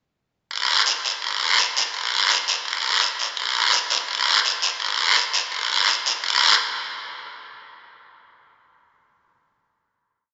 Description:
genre	latin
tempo	168 BPM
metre	4/4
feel	straight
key	none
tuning	none
part	guiro	percussion	0.5-6.3 s	none	-20 LUFS	equal	none
room	wet cathedral reverb, RT60 4.6 s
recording	recorded in a church or concert hall, nothing above 7.8 kHz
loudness	-20 LUFS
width	mono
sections	0.5-6.2 groove; 6.2-7.7 final hit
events	none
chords	none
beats	| 0.50 0.86 1.22 1.58 | 1.94 2.29 2.65 3.01 | 3.37 3.73 4.08 4.44 | 4.80 5.16 5.51 5.87 | 6.23

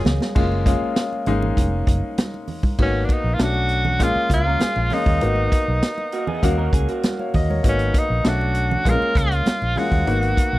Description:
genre	lush 1970s-style soul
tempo	99 BPM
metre	4/4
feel	straight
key	G# dorian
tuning	A4 = 440 Hz
part	bright tenor saxophone	melody	0.0-10.6 s	C#4 to A#4	-23 LUFS	equal	none
part	clear grand piano	accompaniment	0.0-10.6 s	F#3 to E#5	-24 LUFS	left 2 dB	none
part	electric guitar through a small old amp	riff	0.0-0.3, 4.3-7.6 s	G#3 to A#4	-29 LUFS	right 3 dB	none
part	congas	percussion	0.0-10.4 s	none	-31 LUFS	right 4 dB	none
part	vintage muted fingered electric bass	bass	0.1-10.6 s	E#1 to D#2	-22 LUFS	equal	none
part	vintage drum kit	drums	0.1-10.5 s	crash cymbal, hi-hat, kick drum, snare drum	-21 LUFS	equal	none
room	small room reverb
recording	dry, close 1970s-style studio recording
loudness	-18 LUFS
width	side -17 dB against mid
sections	0.4-2.8 A section; 2.8-10.6 B section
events	drum fill 0.0-0.4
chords	0.4 F#maj9; 2.8 G#m7; 3.4 Bm7; 4.0 A#m7; 5.2 G#m7; 6.4 D#m7; 7.6 G#m7; 8.2 Bm7; 8.9 A#m7; 10.1 G#m7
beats	| 0.36 0.96 1.57 2.18 | 2.79 3.39 4.00 4.61 | 5.21 5.82 6.43 7.04 | 7.64 8.25 8.86 9.46 | 10.07

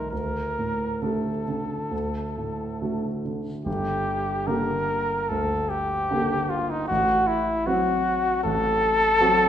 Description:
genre	classical, romantic duo for trumpet and grand piano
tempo	66-79 BPM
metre	4/4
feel	rubato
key	G minor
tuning	A4 = 440 Hz
part	mellow trumpet	melody	0.0-9.5 s	Eb4 to Bb4	-24 LUFS	left 1 dB	none
part	warm concert grand piano	accompaniment	0.0-9.5 s	G1 to A4	-27 LUFS	right 1 dB	none
room	wet recital hall reverb, RT60 1.3 s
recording	recorded in a church or concert hall, nothing above 10.6 kHz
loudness	-22 LUFS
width	side -10 dB against mid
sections	0.0-3.7 A section; 3.7-9.5 B section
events	none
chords	0.1 Dsus4; 1.9 D; 3.7 Gm; 6.9 F#dim/A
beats	| 0.12 1.02 1.92 2.82 | 3.67 4.48 5.30 6.11 | 6.90 7.67 8.44 9.21

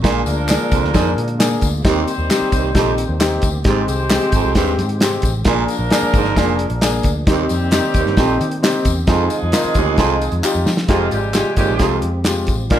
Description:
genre	uptempo 1960s-style soul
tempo	133 BPM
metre	4/4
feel	straight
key	F dorian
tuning	A4 = 441 Hz
part	mellow horn section	second line	0.0-12.8 s	C3 to C5	-23 LUFS	equal	none
part	warm grand piano	accompaniment	0.0-12.8 s	Ab3 to Bb4	-21 LUFS	left 3 dB	none
part	tonewheel organ	sustained chords	0.0-12.8 s	D3 to Ab4	-28 LUFS	left 1 dB	none
part	raspy baritone saxophone	riff	0.0-12.8 s	Eb2 to Bb2	-22 LUFS	right 9 dB	none
part	vintage muted picked electric bass	bass	0.0-12.8 s	F1 to F3	-22 LUFS	equal	none
part	warm soul drum kit	drums	0.0-12.8 s	hi-hat, kick drum, snare drum	-18 LUFS	equal	none
part	tambourine and handclaps	percussion	0.0-12.6 s	none	-27 LUFS	left 2 dB	none
room	light reverb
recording	none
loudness	-14 LUFS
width	side -11 dB against mid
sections	0.0-10.9 A section; 10.9-12.8 B section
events	drum fill 10.4-10.9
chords	0.0 Bb7; 1.8 Eb6; 3.7 Abmaj7; 5.5 Bb7; 7.3 Eb6; 9.1 Fm7; 10.9 Fmadd9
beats	| 0.04 0.49 0.94 1.39 | 1.84 2.30 2.75 3.20 | 3.65 4.11 4.56 5.01 | 5.46 5.91 6.37 6.82 | 7.27 7.72 8.17 8.62 | 9.08 9.53 9.98 10.44 | 10.89 11.35 11.80 12.26 | 12.71

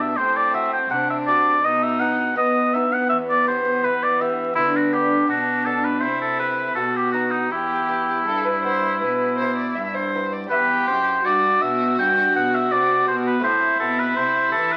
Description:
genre	classical, baroque-style sonata movement with continuo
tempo	82 BPM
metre	4/4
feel	straight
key	E minor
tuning	A4 = 441 Hz
part	warm oboe	melody	0.0-14.8 s	D#4 to G5	-22 LUFS	equal	none
part	rich violin	second line	0.0-14.8 s	B3 to E5	-28 LUFS	equal	none
part	lute	accompaniment	0.0-14.8 s	E2 to G4	-32 LUFS	equal	none
part	clear cello	bass	0.0-14.8 s	E2 to B3	-31 LUFS	equal	none
room	moderate stone room reverb, RT60 1.0 s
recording	very old 78 rpm record, vinyl crackle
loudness	-20 LUFS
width	mono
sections	0.0-10.5 A section; 10.5-14.8 B section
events	none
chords	0.2 F#dim/A; 1.6 B; 3.1 Em; 4.6 Bm/D; 6.0 Am/C; 6.8 B; 7.5 Em; 13.4 Am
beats	0.18 0.91 | 1.63 2.36 3.10 3.83 | 4.56 5.28 6.02 6.76 | 7.51 8.27 9.02 9.77 | 10.52 11.25 11.99 12.71 | 13.43 14.16

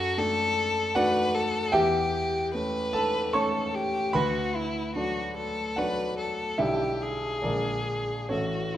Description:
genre	classical, romantic duo for violin and grand piano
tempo	67-78 BPM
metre	3/4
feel	rubato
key	D major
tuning	A4 = 440 Hz
part	rich violin	melody	0.0-8.8 s	E4 to B4	-28 LUFS	left 2 dB	none
part	clear baby grand piano	accompaniment	0.0-8.8 s	A1 to C#6	-27 LUFS	right 1 dB	none
room	moderate recital hall reverb, RT60 1.4 s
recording	none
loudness	-25 LUFS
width	side -12 dB against mid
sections	0.0-8.8 A section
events	none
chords	0.0 D/F#; 1.7 A7/E; 4.1 D; 6.6 G/B; 7.4 Bb7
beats	0.17 0.95 | 1.73 2.53 3.33 | 4.14 4.96 5.77 | 6.59 7.43 8.30

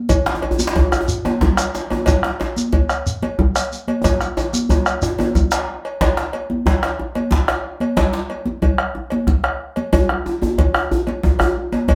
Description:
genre	west african traditional, West African drum ensemble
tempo	122 BPM (dotted quarters)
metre	12/8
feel	straight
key	none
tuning	none
part	bombo	percussion	0.1-11.9 s	none	-22 LUFS	equal	none
part	congas	percussion	0.1-11.9 s	none	-26 LUFS	equal	none
part	cowbell	percussion	0.1-11.9 s	none	-28 LUFS	equal	none
part	djembe	percussion	0.1-11.9 s	none	-25 LUFS	equal	none
part	shekere	percussion	0.1-5.7 s	none	-27 LUFS	equal	none
part	djembe	percussion	0.3-11.9 s	none	-25 LUFS	equal	none
room	wet studio reverb, RT60 0.6 s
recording	band playing live in one room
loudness	-19 LUFS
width	mono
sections	0.0-6.0 A section; 6.0-11.9 B section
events	drum fill 4.0-6.0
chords	none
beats	| 0.10 0.59 1.09 1.58 | 2.07 2.57 3.06 3.55 | 4.04 4.54 5.03 5.52 | 6.01 6.50 6.99 7.48 | 7.97 8.46 8.95 9.44 | 9.93 10.42 10.91 11.39 | 11.88

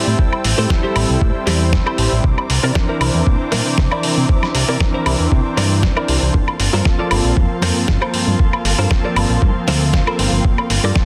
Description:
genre	nu-disco, nu disco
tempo	117 BPM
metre	4/4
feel	swing 54% on 16ths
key	G dorian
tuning	A4 = 439 Hz
part	warm analog pad	accompaniment	0.0-11.1 s	E3 to A5	-24 LUFS	equal	chorus, sidechain pumping, slapback echo
part	muted studio string section	sustained chords	0.0-11.1 s	Bb3 to E6	-29 LUFS	equal	sidechain pumping
part	direct-recorded clean electric guitar	riff	0.0-11.0 s	E4 to G5	-26 LUFS	equal	ensemble chorus, vintage 12-bit sampler grit
part	fat analog bass	bass	0.0-10.9 s	G1 to C3	-20 LUFS	equal	none
part	electronic kick drum	drums	0.2-11.1 s	none	-18 LUFS	equal	none
part	dusty soul sampler-style drum kit	drums	0.3-11.1 s	hi-hat, snare drum, woodblock	-23 LUFS	equal	none
part	congas	percussion	1.5-9.8 s	none	-29 LUFS	equal	none
room	light reverb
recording	dense, heavily limited modern master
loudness	-16 LUFS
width	mono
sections	0.0-11.1 A section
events	clean electric guitar fill 9.4-10.4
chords	0.0 Am7; 2.2 C9; 6.3 Gm11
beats	| 0.19 0.70 1.22 1.73 | 2.24 2.75 3.27 3.78 | 4.29 4.80 5.32 5.83 | 6.34 6.86 7.37 7.88 | 8.39 8.91 9.42 9.93 | 10.45 10.96

